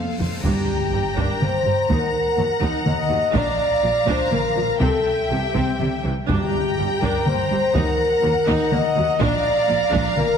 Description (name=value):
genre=cinematic, epic orchestral film score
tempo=123 BPM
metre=3/4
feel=straight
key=unclear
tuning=A4 = 440 Hz
part: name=warm symphonic violin section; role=melody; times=0.0-10.4 s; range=F5 to Bb5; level=-28 LUFS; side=left 4 dB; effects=none
part: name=warm symphonic violin section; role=second line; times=0.0-10.4 s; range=A4 to G5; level=-29 LUFS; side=left 4 dB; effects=none
part: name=warm studio viola section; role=accompaniment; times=0.0-10.3 s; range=E3 to C5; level=-29 LUFS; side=right 2 dB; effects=none
part: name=warm French horn section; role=sustained chords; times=0.0-10.4 s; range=A3 to Eb5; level=-21 LUFS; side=left 1 dB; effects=none
part: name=rich symphonic cello section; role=bass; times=0.0-10.3 s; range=Eb2 to C3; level=-27 LUFS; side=right 3 dB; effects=none
part: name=cymbal swell and sub drop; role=sound effects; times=0.0-1.9 s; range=none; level=-33 LUFS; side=left 1 dB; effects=none
part: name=dark symphonic double bass section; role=bass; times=0.2-10.2 s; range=F1 to Eb2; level=-28 LUFS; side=right 3 dB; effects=none
part: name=taiko ensemble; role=drums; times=0.2-10.4 s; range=none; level=-27 LUFS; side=equal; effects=none
part: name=timpani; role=percussion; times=0.4-1.1, 6.3-7.0 s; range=G2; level=-29 LUFS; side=right 1 dB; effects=none
room=wet scoring stage reverb, RT60 1.7 s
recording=heavily compressed radio sound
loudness=-18 LUFS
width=side -7 dB against mid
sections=0.4-10.4 A section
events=drum fill 0.0-0.4; cymbal swell 0.0-0.4; impact 0.4-1.9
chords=0.4 Gm; 1.9 Ebm; 3.3 Bb; 4.8 C; 6.3 Gm; 7.8 Ebm; 9.2 Bb